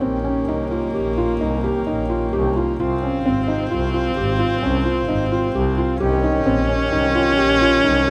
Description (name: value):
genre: contemporary instrumental, chamber music in an uneven meter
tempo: 130 BPM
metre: 7/4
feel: straight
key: unclear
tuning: A4 = 439 Hz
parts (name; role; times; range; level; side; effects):
- warm viola; second line; 0.0-8.1 s; Bb3 to Db4; -24 LUFS; equal; none
- pedal harmonium; sustained chords; 0.0-8.1 s; C3 to G4; -28 LUFS; equal; none
- felt-muted upright piano; arpeggios; 0.0-8.1 s; C4 to G4; -24 LUFS; equal; none
- clear double bass; bass; 0.0-8.1 s; Ab1 to C2; -26 LUFS; equal; none
room: little or no reverb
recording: close, detailed microphones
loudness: -19 LUFS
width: mono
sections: 0.0-8.1 A section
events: none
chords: 0.0 Eb7; 2.8 Dbmaj7 (rootless); 6.0 Eb7